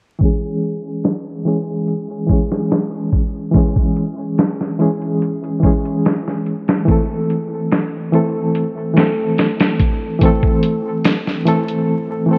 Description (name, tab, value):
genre	trip hop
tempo	72 BPM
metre	4/4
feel	straight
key	C# harmonic minor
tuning	A4 = 440 Hz
part	bright reed electric piano	accompaniment	0.2-12.4 s	E3 to A4	-20 LUFS	equal	fast tremolo, low-pass filter, tape echo
part	dusty soul sampler-style drum kit	drums	0.2-11.9 s	hi-hat, kick drum, snare drum	-19 LUFS	equal	low-pass filter on kick, low-pass filter on hats, low-pass filter on snare
room	moderate lush hall reverb, RT60 2.5 s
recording	rough home demo mix, vinyl crackle, low-pass filter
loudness	-18 LUFS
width	mono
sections	0.2-12.4 A section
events	filter sweep on reed electric piano 0.2-12.4; filter sweep 0.2-12.4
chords	0.2 C#m; 6.9 Am